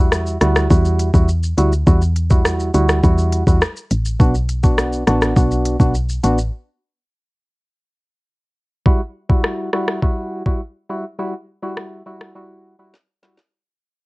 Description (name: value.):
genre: dancehall.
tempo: 103 BPM.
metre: 4/4.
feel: straight.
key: E minor.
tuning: A4 = 440 Hz.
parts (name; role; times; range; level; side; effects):
percussive organ stab; accompaniment; 0.0-13.4 s; G3 to F#4; -21 LUFS; right 1 dB; chorus, sidechain pumping.
woody FM bass; bass; 0.0-6.5 s; A1 to E2; -17 LUFS; equal; none.
island pop drum kit; drums; 0.1-13.5 s; hi-hat, kick drum, rim click, shaker, snare drum; -16 LUFS; equal; cassette tape.
room: little or no reverb.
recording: home recording on cassette.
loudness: -14 LUFS.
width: side -23 dB against mid.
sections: 0.0-8.9 A section; 8.9-13.5 B section.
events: break 6.5-8.9; fade-out 8.9-13.5; drum fill 12.9-13.5.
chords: 0.0 Emadd9; 4.2 Bm; 8.9 Emadd9.